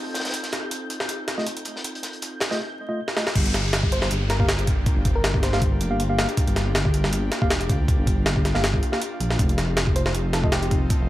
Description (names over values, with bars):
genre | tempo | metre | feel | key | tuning
drum and bass, jungle | 159 BPM | 4/4 | swing 54% on 16ths | G minor | A4 = 440 Hz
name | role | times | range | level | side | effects
airy breathy pad | sustained chords | 0.0-11.1 s | A3 to A4 | -34 LUFS | equal | chorus
backwards swelling texture | texture | 0.0-2.6 s | G6 | -37 LUFS | equal | built-in reverb
crunchy breakbeat drum kit | drums | 0.1-2.6 s | hi-hat, snare drum | -33 LUFS | left 2 dB | high-pass filter on hats, high-pass filter on snare, high-pass filter on room
jungle sampler-style drum kit | drums | 0.2-11.0 s | crash cymbal, hi-hat, kick drum, snare drum | -23 LUFS | equal | none
mellow tine electric piano | stabs | 1.4-10.5 s | A3 to F5 | -30 LUFS | equal | dub echo
dark detuned saw bass | bass | 3.4-11.1 s | F1 to D2 | -24 LUFS | equal | none
downlifter | sound effects | 3.4-6.4 s | none | -34 LUFS | equal | none
soft struck synth lead | melody | 3.9-5.7, 10.0-10.8 s | G4 to C5 | -33 LUFS | left 1 dB | chorus, dub echo
room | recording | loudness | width
digital ambience | vinyl crackle | -20 LUFS | side -15 dB against mid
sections
0.0-3.4 A section; 3.4-11.1 B section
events
drum fill 3.1; drop 3.4-11.1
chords
0.0 F7; 3.4 Gm7; 9.4 F7